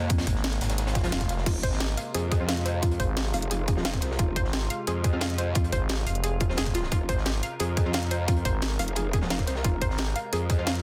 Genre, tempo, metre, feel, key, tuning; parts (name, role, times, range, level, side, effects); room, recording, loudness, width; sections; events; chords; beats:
dark technical drum and bass; 176 BPM; 4/4; straight; F minor; A4 = 440 Hz
metallic inharmonic drone; sustained chords; 0.0-10.8 s; C3 to Bb4; -40 LUFS; equal; chorus, built-in reverb, vintage 12-bit sampler grit, sidechain pumping
growl bass; bass; 0.0-10.8 s; F1 to F2; -31 LUFS; equal; chorus, overdrive
crunchy breakbeat drum kit; drums; 0.1-10.8 s; hi-hat, snare drum; -42 LUFS; equal
drum and bass drum kit; drums; 0.1-10.8 s; crash cymbal, hi-hat, snare drum; -33 LUFS; equal; overdrive
electronic kick drum; drums; 0.1-10.6 s; -29 LUFS; equal; overdrive
growling FM bass; bass; 0.3-10.1 s; F1 to Ab1; -31 LUFS; equal
swell; sound effects; 0.9-1.5 s; -41 LUFS; equal
orchestra-hit-like synth stab; stabs; 1.0-10.7 s; F3 to F4; -39 LUFS; equal
warbly dusty pluck; arpeggios; 1.5-10.7 s; F4 to F5; -36 LUFS; equal; chorus, sidechain pumping, dub echo
digital ambience; dense, heavily limited modern master; -27 LUFS; mono
0.0-10.8 A section
swell 0.9-1.5
0.0 Fm
| 0.10 0.44 0.78 1.12 | 1.46 1.80 2.15 2.49 | 2.83 3.17 3.51 3.85 | 4.19 4.53 4.87 5.21 | 5.55 5.89 6.24 6.58 | 6.92 7.26 7.60 7.94 | 8.28 8.62 8.96 9.30 | 9.64 9.99 10.33 10.67